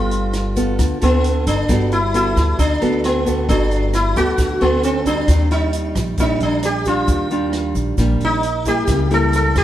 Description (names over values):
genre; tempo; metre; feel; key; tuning
bossa nova; 133 BPM; 4/4; straight; unclear; A4 = 440 Hz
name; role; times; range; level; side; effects
sitar; melody; 0.0-9.6 s; B3 to A4; -20 LUFS; equal; none
nylon-string guitar; accompaniment; 0.0-9.6 s; Bb2 to A4; -21 LUFS; right 1 dB; none
upright bass; bass; 0.0-9.6 s; G1 to E2; -20 LUFS; equal; none
vintage drum kit; drums; 0.1-9.6 s; hi-hat, kick drum, rim click; -24 LUFS; equal; none
egg shaker; percussion; 0.1-9.6 s; none; -39 LUFS; right 7 dB; none
room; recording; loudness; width
moderate echo chamber reverb, RT60 1.9 s; heard from further back in the room; -15 LUFS; side -12 dB against mid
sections
0.0-1.7 A section; 1.7-9.6 B section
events
none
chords
0.0 G9; 1.7 Gmaj9; 5.3 Ebmaj9; 8.9 A7b9/C#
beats
0.34 0.79 1.24 | 1.69 2.14 2.59 3.04 | 3.49 3.94 4.39 4.84 | 5.29 5.74 6.19 6.64 | 7.09 7.54 7.99 8.44 | 8.88 9.33